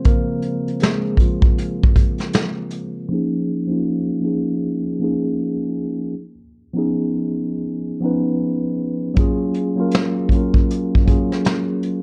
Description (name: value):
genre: lo-fi hip hop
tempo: 79 BPM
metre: 4/4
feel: swing 62% on 16ths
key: Db major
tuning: A4 = 440 Hz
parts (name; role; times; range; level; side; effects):
- mellow tine electric piano; accompaniment; 0.0-12.0 s; Db3 to C5; -22 LUFS; equal; low-pass filter, plate reverb
- vintage brush drum kit; drums; 0.0-2.9, 9.2-12.0 s; hi-hat, kick drum, snare drum; -18 LUFS; equal; vintage 12-bit sampler grit
room: moderate small room reverb, RT60 0.5 s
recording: dark, warm production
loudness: -20 LUFS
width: mono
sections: 0.0-3.1 A section; 3.1-12.0 B section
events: tine electric piano solo 0.0-3.1; filter sweep on tine electric piano 3.1-12.0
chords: 0.0 Db6; 6.1 Db9; 9.2 Gbmaj7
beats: | 0.06 0.82 1.58 2.33 | 3.10 3.85 4.61 5.37 | 6.13 6.89 7.65 8.41 | 9.17 9.93 10.69 11.45